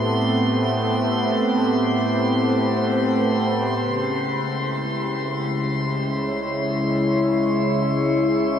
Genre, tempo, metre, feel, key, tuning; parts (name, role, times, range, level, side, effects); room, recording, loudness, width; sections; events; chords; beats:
ambient; free time; A4 = 439 Hz
warm analog pad; sustained chords; 0.0-8.6 s; A2 to Db5; -20 LUFS; equal; chorus
drifting glass-harmonics texture; texture; 0.0-8.6 s; C6; -29 LUFS; left 1 dB; chorus, built-in reverb
warm symphonic cello section; bass; 3.8-8.6 s; Db2; -41 LUFS; left 1 dB
wet shimmer reverb, RT60 9.4 s; cassette tape; -19 LUFS; side -8 dB against mid
0.0-3.8 A section; 3.8-8.6 B section
0.0 Am7; 3.8 Dbm
free time